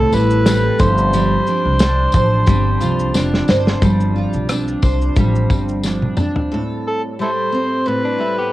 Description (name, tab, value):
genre	acoustic pop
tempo	89 BPM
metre	4/4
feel	swing 55% on 16ths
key	unclear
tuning	A4 = 440 Hz
part	overdriven harmonica	melody	0.0-8.5 s	E4 to C5	-19 LUFS	equal	cassette tape
part	picked steel-string acoustic guitar	accompaniment	0.0-8.5 s	A2 to C5	-20 LUFS	equal	double-tracked left and right, cassette tape
part	fingerpicked steel-string acoustic guitar	arpeggios	0.0-7.1 s	F3 to E4	-24 LUFS	right 4 dB	cassette tape
part	upright bass	bass	0.0-6.1 s	F1 to C2	-18 LUFS	equal	none
part	loose indie drum kit	drums	0.1-6.5 s	kick drum, rim click, shaker, snare drum, toms	-17 LUFS	equal	none
part	tambourine	percussion	0.1-6.3 s	none	-31 LUFS	left 5 dB	none
part	direct-recorded clean electric guitar	second line	8.1-8.5 s	G3 to G4	-23 LUFS	left 2 dB	cassette tape
room	light reverb, studio reverb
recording	home recording on cassette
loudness	-14 LUFS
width	side -16 dB against mid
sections	0.0-3.8 A section; 3.8-6.5 B section; 6.5-8.5 C section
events	drum fill 3.1-3.8, 5.8-6.5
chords	0.0 Am7; 0.8 G7sus4; 6.5 Am7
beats	0.46 | 1.13 1.80 2.48 3.15 | 3.82 4.49 5.16 5.84 | 6.51 7.18 7.86